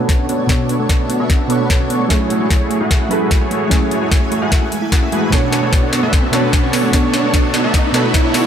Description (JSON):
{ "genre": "future bass", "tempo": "149 BPM", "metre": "4/4", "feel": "half-time", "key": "B dorian", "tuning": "A4 = 440 Hz", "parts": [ { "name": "soft round pluck", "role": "accompaniment", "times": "0.0-8.5 s", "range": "B2 to C#5", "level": "-20 LUFS", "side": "right 2 dB", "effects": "chorus, sidechain pumping, tape echo" }, { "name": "shimmering ambient pad", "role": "sustained chords", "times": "0.0-8.5 s", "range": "F#2 to G#5", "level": "-26 LUFS", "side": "left 1 dB", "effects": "chorus, built-in reverb, phaser, sidechain pumping" }, { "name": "thumb-piano-like synth pluck", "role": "arpeggios", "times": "0.0-8.5 s", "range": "G#3 to E4", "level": "-23 LUFS", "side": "right 4 dB", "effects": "chorus, sidechain pumping, tape echo" }, { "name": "dense compressed supersaw", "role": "riff", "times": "0.0-8.5 s", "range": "A3 to F#5", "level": "-19 LUFS", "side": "equal", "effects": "sidechain pumping, low-pass filter, tape echo" }, { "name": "riser", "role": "sound effects", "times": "2.7-8.5 s", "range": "none", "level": "-25 LUFS", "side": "right 1 dB", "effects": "none" }, { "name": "electronic kick drum", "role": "drums", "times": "0.1-8.2 s", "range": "none", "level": "-15 LUFS", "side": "left 1 dB", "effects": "small room ambience" }, { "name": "trap drum kit", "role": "drums", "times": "0.1-8.4 s", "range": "hi-hat, snare drum", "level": "-22 LUFS", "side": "left 1 dB", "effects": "overdrive, high-pass filter on snare, small room ambience, high-pass filter on hats" } ], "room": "light reverb", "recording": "none", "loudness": "-13 LUFS", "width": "side -8 dB against mid", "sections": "0.0-8.5 A section", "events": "build-up 0.0-8.5; drum fill 0.0-8.5; filter sweep on supersaw synth 0.0-8.5; riser 2.7-8.5", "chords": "0.0 Bm9; 2.1 F#m9; 5.3 Bm9", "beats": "0.09 | 0.49 0.89 1.30 1.70 | 2.10 2.50 2.91 3.31 | 3.71 4.12 4.52 4.92 | 5.32 5.73 6.13 6.53 | 6.93 7.34 7.74 8.14" }